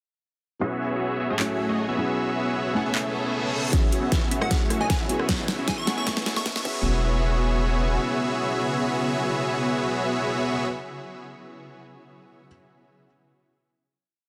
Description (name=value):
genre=future bass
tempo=154 BPM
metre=4/4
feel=half-time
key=E major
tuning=A4 = 440 Hz
part: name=felt-muted upright piano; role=accompaniment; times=0.6-12.5 s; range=F#3 to G#5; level=-34 LUFS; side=equal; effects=sidechain pumping, delay
part: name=dense compressed supersaw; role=riff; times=0.6-10.7 s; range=A3 to F#5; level=-28 LUFS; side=equal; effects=cassette tape, sidechain pumping, low-pass filter, delay
part: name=dubstep drum kit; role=drums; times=1.4-6.7 s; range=crash cymbal, handclaps, hi-hat, rim click, snare drum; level=-32 LUFS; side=equal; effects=overdrive
part: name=shimmering ambient pad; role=sustained chords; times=3.2-10.6 s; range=C#3 to G#4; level=-40 LUFS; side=equal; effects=none
part: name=reverse cymbal and riser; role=sound effects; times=3.1-6.8 s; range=none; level=-39 LUFS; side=equal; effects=none
part: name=thumb-piano-like synth pluck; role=arpeggios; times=3.7-7.0 s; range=C#4 to G#4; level=-40 LUFS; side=equal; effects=none
part: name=unison pluck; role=arpeggios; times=3.7-10.7 s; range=D#5 to F#5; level=-44 LUFS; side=equal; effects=none
part: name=warm 808-style bass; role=bass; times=3.7-8.0 s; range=E1 to F#2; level=-28 LUFS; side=equal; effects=sidechain pumping, high-pass filter
part: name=electronic kick drum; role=drums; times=3.7-6.7 s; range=none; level=-27 LUFS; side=equal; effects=overdrive
part: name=plucky unison lead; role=melody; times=4.4-6.7 s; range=F#5 to C#6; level=-36 LUFS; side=equal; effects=phaser, sidechain pumping, tape echo
room=light reverb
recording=dense, heavily limited modern master, high-pass filter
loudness=-25 LUFS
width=mono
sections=0.6-3.7 intro; 3.7-6.8 build; 6.8-10.0 final hit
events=reverse cymbal 3.1-3.7; build-up 3.7-6.8; drum fill 3.7-6.8; filter sweep on supersaw synth 3.7-6.8; filter sweep 3.7-6.8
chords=0.6 E69; 1.4 F#m9; 2.0 E69; 2.8 Amaj9; 3.7 E69; 4.5 F#m9; 5.1 E69; 5.9 Amaj9; 6.7 E69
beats=| 0.61 1.00 1.39 1.78 | 2.17 2.56 2.95 3.34 | 3.73 4.12 4.51 4.90 | 5.29 5.68 6.07 6.46 | 6.85 7.24 7.63 8.02 | 8.40 8.79 9.19 9.57